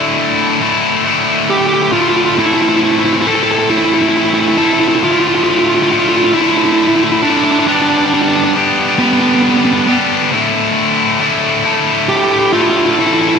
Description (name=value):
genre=rock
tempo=45 BPM (dotted quarters)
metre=6/8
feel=straight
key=D dorian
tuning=A4 = 440 Hz
part: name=tight distorted guitar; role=riff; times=0.0-13.4 s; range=D2 to A4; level=-12 LUFS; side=left 2 dB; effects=distortion, slapback echo
part: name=dark smooth lead guitar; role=melody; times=1.5-13.4 s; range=B3 to A4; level=-13 LUFS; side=right 2 dB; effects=overdrive, tape echo
room=moderate lush hall reverb, RT60 1.6 s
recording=big arena sound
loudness=-10 LUFS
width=side -6 dB against mid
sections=0.0-13.4 A section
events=none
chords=0.0 Dsus2; 2.4 Am; 5.0 Dmadd9; 7.7 G; 10.3 Dsus2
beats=1.05 | 2.37 3.70 | 5.03 6.35 | 7.67 9.00 | 10.32 11.65 | 12.97